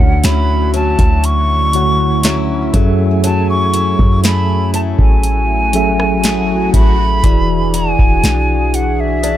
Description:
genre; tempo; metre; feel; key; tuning
contemporary R&B; 60 BPM; 4/4; straight; F# minor; A4 = 440 Hz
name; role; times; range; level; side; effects
hollow concert flute; melody; 0.0-9.4 s; E5 to C#6; -18 LUFS; right 1 dB; none
mellow tine electric piano; accompaniment; 0.0-9.4 s; D3 to F#5; -18 LUFS; right 1 dB; medium stereo tremolo
chorused pulse-width pad; sustained chords; 0.0-9.4 s; D3 to G#5; -23 LUFS; equal; none
picked acoustic archtop guitar; arpeggios; 0.0-9.4 s; D3 to G#4; -24 LUFS; left 8 dB; none
clean 808-style bass; bass; 0.0-9.4 s; E1 to F#2; -16 LUFS; equal; none
booming analog drum machine; drums; 0.2-9.4 s; hi-hat, kick drum, rim click, snare drum; -13 LUFS; equal; none
swell; sound effects; 5.5-7.2 s; none; -28 LUFS; equal; none
room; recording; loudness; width
little or no reverb; faint mains hum; -11 LUFS; side -12 dB against mid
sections
0.0-7.2 A section; 7.2-9.4 B section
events
swell 5.5-7.2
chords
0.0 Dmaj9; 2.7 F#m9; 7.2 E9

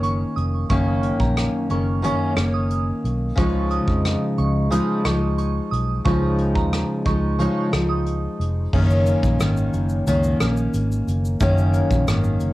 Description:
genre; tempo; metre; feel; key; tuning
indie pop, bedroom pop; 90 BPM; 4/4; straight; F# major; A4 = 440 Hz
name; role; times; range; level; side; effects
soft synth bell; second line; 0.0-8.2 s; A#5 to D#6; -30 LUFS; right 5 dB; wide subtle chorus, tape echo, plate reverb
fingerpicked steel-string acoustic guitar; accompaniment; 0.0-12.5 s; F#2 to D#4; -21 LUFS; left 1 dB; wide subtle chorus, warbly pitch drift
vintage muted fingered electric bass; bass; 0.0-12.5 s; E#1 to E#2; -23 LUFS; equal; none
soft brush drum kit; drums; 0.0-12.5 s; crash cymbal, hi-hat, kick drum, rim click, shaker; -24 LUFS; equal; cassette tape
room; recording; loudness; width
light reverb; home recording on cassette; -18 LUFS; side -17 dB against mid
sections
0.0-8.7 A section; 8.7-12.5 B section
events
none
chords
0.0 F#6; 3.4 C#add9; 8.7 F#6

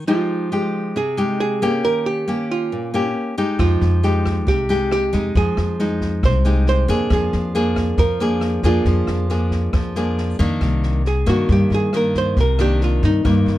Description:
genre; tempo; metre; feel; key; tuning
bossa nova; 137 BPM; 4/4; straight; unclear; A4 = 440 Hz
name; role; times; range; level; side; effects
nylon-string guitar; accompaniment; 0.0-13.6 s; G2 to Ab4; -20 LUFS; left 1 dB; none
archtop guitar, miked and amplified; melody; 0.1-13.6 s; Eb4 to C5; -22 LUFS; right 3 dB; none
upright bass; bass; 3.6-13.6 s; C2 to G2; -20 LUFS; equal; none
open jazz drum kit; drums; 3.6-13.5 s; kick drum, rim click, snare drum; -25 LUFS; equal; none
room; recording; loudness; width
little or no reverb; dark, warm production; -16 LUFS; side -14 dB against mid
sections
0.0-10.6 A section; 10.6-13.6 B section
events
hollow-body jazz guitar solo 10.6-13.6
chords
0.1 Fm9; 1.8 Eb7; 3.2 Ebadd11; 3.6 Fm9; 7.1 Bb7/F; 10.6 Cm9

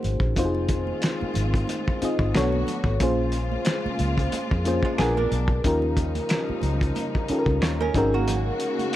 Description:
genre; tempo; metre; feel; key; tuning
R&B, neo-soul; 91 BPM; 4/4; swing 56% on 16ths; Bb minor; A4 = 440 Hz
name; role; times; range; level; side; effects
archtop guitar, miked and amplified; second line; 0.0-0.2, 4.8-9.0 s; Ab3 to Db5; -29 LUFS; right 5 dB; none
mellow FM electric piano; accompaniment; 0.0-9.0 s; Bb3 to Eb5; -26 LUFS; left 2 dB; chorus
vintage muted fingered electric bass; bass; 0.0-8.5 s; F1 to F2; -26 LUFS; equal; none
cloth-damped thuddy drum kit; drums; 0.0-9.0 s; finger snaps, hi-hat, kick drum, snare drum; -26 LUFS; equal; none
congas; percussion; 0.0-8.9 s; none; -37 LUFS; right 8 dB; none
warm studio string section; sustained chords; 0.4-9.0 s; Bb2 to F#4; -32 LUFS; left 1 dB; none
room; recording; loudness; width
small room ambience; dark, warm production; -21 LUFS; side -13 dB against mid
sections
0.0-9.0 A section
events
none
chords
0.4 Fm7; 2.3 Bm7; 3.0 Bbm7; 5.0 Bb7b9; 5.6 Eb9; 7.9 Ab9sus4

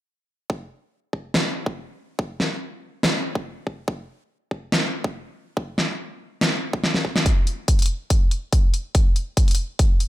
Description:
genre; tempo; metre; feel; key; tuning
heavy wobble dubstep; 142 BPM; 4/4; half-time; none; none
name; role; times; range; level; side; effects
electronic kick drum; drums; 0.5-9.9 s; none; -20 LUFS; equal; high-pass filter on kick, studio reverb
big-room dance drum kit; drums; 1.3-10.1 s; hi-hat, snare drum; -23 LUFS; equal; studio reverb
room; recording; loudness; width
light reverb, digital ambience; none; -21 LUFS; side -16 dB against mid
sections
0.5-7.3 A section; 7.3-10.1 B section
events
drum fill 6.8-7.3; build-up 7.3-10.1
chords
none

